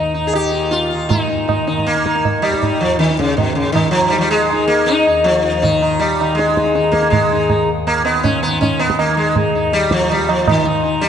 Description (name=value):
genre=indian classical, Hindustani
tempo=160 BPM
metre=4/4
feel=straight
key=Eb major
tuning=A4 = 440 Hz
part: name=sitar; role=melody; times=0.0-11.1 s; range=Cb3 to Ab4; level=-15 LUFS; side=left 1 dB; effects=none
part: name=tanpura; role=drone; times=0.0-11.1 s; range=Eb2 to Eb3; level=-23 LUFS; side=left 1 dB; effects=none
part: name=tabla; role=percussion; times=0.3-11.1 s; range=none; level=-20 LUFS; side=right 4 dB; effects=none
room=wet scoring stage reverb, RT60 1.9 s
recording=nothing above 11.0 kHz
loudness=-13 LUFS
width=side -8 dB against mid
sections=0.0-1.1 A section; 1.1-11.1 B section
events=speeding up 0.0-11.1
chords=none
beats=0.34 0.72 | 1.10 1.49 1.87 2.25 | 2.62 3.00 3.38 3.76 | 4.14 4.51 4.89 5.27 | 5.64 6.02 6.39 6.76 | 7.14 7.51 7.88 8.26 | 8.63 9.00 9.37 9.74 | 10.11 10.47 10.84